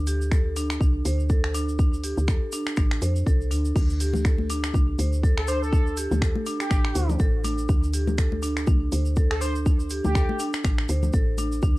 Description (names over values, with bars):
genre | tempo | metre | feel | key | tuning
afro house | 122 BPM | 4/4 | swing 57% on 16ths | unclear | A4 = 441 Hz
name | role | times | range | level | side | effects
woody FM bass | bass | 0.0-11.8 s | A1 to F2 | -26 LUFS | equal | sidechain pumping
marimba with medium hard mallets | arpeggios | 0.1-11.8 s | D4 to C5 | -30 LUFS | right 1 dB | sidechain pumping, cassette tape, tape echo
house drum kit | drums | 0.1-11.5 s | crash cymbal, finger snaps, hi-hat | -33 LUFS | equal | cassette tape
tube shaker | percussion | 0.1-11.7 s | none | -39 LUFS | right 3 dB | none
electronic kick drum | drums | 0.3-11.7 s | none | -21 LUFS | equal | cassette tape
congas | percussion | 4.1-11.5 s | none | -32 LUFS | left 4 dB | none
expressive synth lead | melody | 5.4-10.4 s | G4 to C5 | -32 LUFS | equal | wide subtle chorus, cassette tape, tape echo
room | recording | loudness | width
light reverb | home recording on cassette | -21 LUFS | side -19 dB against mid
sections
0.0-11.8 A section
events
none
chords
0.0 D7(no3)